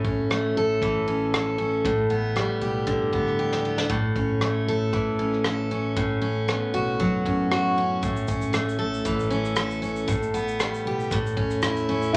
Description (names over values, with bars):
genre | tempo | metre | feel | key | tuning
acoustic pop | 116 BPM | 4/4 | swing 55% on 16ths | A major | A4 = 439 Hz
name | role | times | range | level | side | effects
picked steel-string acoustic guitar | accompaniment | 0.0-12.2 s | A2 to A4 | -26 LUFS | equal | none
upright bass | bass | 0.0-12.2 s | A1 to F#2 | -37 LUFS | equal | none
vintage brush drum kit | drums | 0.0-12.2 s | crash cymbal, kick drum, rim click, shaker, snare drum | -32 LUFS | equal | none
clear upright piano | accompaniment | 12.1-12.2 s | E4 | -20 LUFS | equal | none
room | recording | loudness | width
moderate large studio reverb, RT60 0.9 s | none | -25 LUFS | mono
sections
0.0-12.1 A section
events
drum fill 3.4-3.9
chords
0.0 A; 1.8 Gadd9/A; 3.9 A; 6.0 Bsus2/A; 8.0 A; 10.1 Gadd9/A; 11.1 A